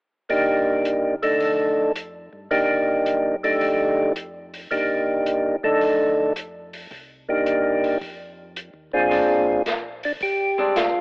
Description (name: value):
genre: soul jazz organ trio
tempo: 109 BPM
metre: 4/4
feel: swing 68% on 8ths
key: Bb major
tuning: A4 = 442 Hz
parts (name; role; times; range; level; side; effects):
- percussive tonewheel organ; melody; 0.3-11.0 s; Bb2 to A4; -19 LUFS; equal; slow rotary speaker, cassette tape
- mellow tonewheel organ; bass; 0.3-11.0 s; F1 to G2; -47 LUFS; equal; slow rotary speaker
- open jazz drum kit; drums; 0.3-10.9 s; hi-hat, kick drum, snare drum; -31 LUFS; equal; none
- archtop guitar, miked and amplified; accompaniment; 9.1-11.0 s; Ab3 to D4; -26 LUFS; equal; cassette tape
room: moderate spring reverb, RT60 2.5 s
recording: home recording on cassette, telephone sound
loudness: -19 LUFS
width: side -29 dB against mid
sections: 0.3-9.1 A section; 9.1-11.0 B section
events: none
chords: 0.3 Cm7; 1.4 F13; 2.5 Cm7; 3.6 F13; 4.7 Cm7; 5.8 F6; 6.9 Cm7; 8.0 F5; 9.1 Bb9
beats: | 0.30 0.85 1.41 1.96 | 2.51 3.06 3.61 4.16 | 4.71 5.26 5.81 6.36 | 6.91 7.46 8.01 8.56 | 9.11 9.66 10.21 10.75